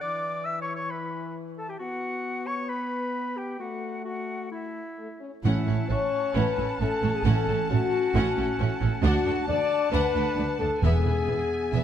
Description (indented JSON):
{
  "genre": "cinematic, heroic adventure film score",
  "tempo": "133 BPM",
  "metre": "4/4",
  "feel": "straight",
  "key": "A major from 5.4 s",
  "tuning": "A4 = 440 Hz",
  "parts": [
    { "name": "bright clarinet", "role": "second line", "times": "0.0-11.8 s", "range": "B3 to E5", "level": "-36 LUFS", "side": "left 1 dB", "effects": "none" },
    { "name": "silver concert flute", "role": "second line", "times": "0.0-11.8 s", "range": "E5 to E6", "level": "-35 LUFS", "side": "left 1 dB", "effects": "none" },
    { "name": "warm French horn section", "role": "sustained chords", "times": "0.0-11.8 s", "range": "E3 to D5", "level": "-29 LUFS", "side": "left 5 dB", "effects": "none" },
    { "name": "warm symphonic violin section", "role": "melody", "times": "5.4-11.8 s", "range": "G#5 to A5", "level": "-37 LUFS", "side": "left 4 dB", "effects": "none" },
    { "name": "clear symphonic violin section", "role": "second line", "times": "5.4-11.8 s", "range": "G#4 to F#5", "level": "-40 LUFS", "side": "equal", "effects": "none" },
    { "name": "clear symphonic viola section", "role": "accompaniment", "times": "5.4-11.8 s", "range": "B3 to D4", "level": "-36 LUFS", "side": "right 1 dB", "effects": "none" },
    { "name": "rich symphonic double bass section", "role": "bass", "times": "5.4-11.8 s", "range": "E1 to D2", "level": "-29 LUFS", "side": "right 4 dB", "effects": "none" },
    { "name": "timpani", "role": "percussion", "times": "5.4-7.9, 10.8-11.5 s", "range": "E2 to A2", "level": "-27 LUFS", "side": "equal", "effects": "none" },
    { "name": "clear oboe", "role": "second line", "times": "5.5-11.8 s", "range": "E5 to F#5", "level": "-38 LUFS", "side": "right 2 dB", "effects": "none" },
    { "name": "rich symphonic cello section", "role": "bass", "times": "5.5-11.8 s", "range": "D2 to A2", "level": "-29 LUFS", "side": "right 4 dB", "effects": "none" }
  ],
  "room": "light reverb",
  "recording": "none",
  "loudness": "-24 LUFS",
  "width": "side -9 dB against mid",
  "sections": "0.0-5.4 A section; 5.4-11.8 B section",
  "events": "none",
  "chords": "0.0 N.C.; 4.5 A5; 5.4 A6; 7.3 F#m/A; 9.0 D; 10.8 E"
}